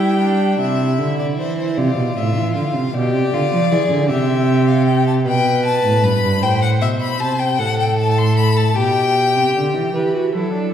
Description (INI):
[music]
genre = classical, baroque-style fugue for string quartet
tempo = 51 BPM (dotted quarters)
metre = 6/8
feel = straight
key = C major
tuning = A4 = 439 Hz
[part]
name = rich violin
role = melody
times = 0.0-9.9 s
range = C5 to C6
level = -20 LUFS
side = left 4 dB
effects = none
[part]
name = rich violin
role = second line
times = 0.0-10.7 s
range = E4 to C5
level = -22 LUFS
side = left 2 dB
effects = none
[part]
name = rich viola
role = accompaniment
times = 0.0-0.6, 9.9-10.7 s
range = D4 to G4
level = -23 LUFS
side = right 2 dB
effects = none
[part]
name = dark cello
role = bass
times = 0.0-10.7 s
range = G2 to G3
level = -17 LUFS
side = right 2 dB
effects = none
[sound]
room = wet scoring stage reverb, RT60 1.6 s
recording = heard from further back in the room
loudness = -15 LUFS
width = side -9 dB against mid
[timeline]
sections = 0.6-9.9 A section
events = none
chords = 0.0 G5; 0.6 C; 1.8 Dm7; 2.9 Bdim7; 4.1 C; 5.3 G/B; 6.4 Am7; 7.6 N.C.; 8.8 G/B; 9.9 Em